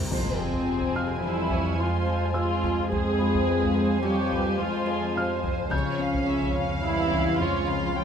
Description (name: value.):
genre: cinematic, suspense film score.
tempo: 107 BPM.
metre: 5/4.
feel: straight.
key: F hungarian minor.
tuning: A4 = 441 Hz.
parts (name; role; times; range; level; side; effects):
glassy FM pad; sustained chords; 0.0-8.0 s; C5 to Ab5; -37 LUFS; left 2 dB; ensemble chorus, built-in reverb.
Celtic harp; riff; 0.0-8.0 s; F2 to Db4; -34 LUFS; left 9 dB; none.
organ-like drone; drone; 0.1-8.0 s; F2; -34 LUFS; right 1 dB; ensemble chorus, built-in reverb.
cymbal swell and impact; sound effects; 0.0-2.9 s; none; -35 LUFS; equal; none.
felt-muted upright piano; texture; 0.0-8.0 s; F5 to Bb6; -38 LUFS; equal; none.
rich studio violin section; melody; 0.1-8.0 s; F5 to Ab5; -41 LUFS; left 2 dB; none.
dark studio violin section; second line; 0.1-8.0 s; Ab4 to G5; -33 LUFS; right 1 dB; none.
warm studio viola section; accompaniment; 0.1-8.0 s; C4 to Ab4; -28 LUFS; right 1 dB; none.
dark French horn section; sustained chords; 0.1-8.0 s; F3 to C4; -33 LUFS; left 4 dB; none.
dark studio cello section; bass; 0.1-8.0 s; C3 to Ab3; -32 LUFS; right 2 dB; none.
rich studio double bass section; bass; 0.1-8.0 s; Db2 to F2; -34 LUFS; right 3 dB; none.
taiko ensemble; drums; 0.1-7.7 s; none; -34 LUFS; equal; none.
room: moderate scoring stage reverb, RT60 1.7 s.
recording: close, detailed microphones.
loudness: -23 LUFS.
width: side -7 dB against mid.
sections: 0.1-8.0 A section.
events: impact 0.1-2.9.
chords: 0.1 Fm; 5.7 Db.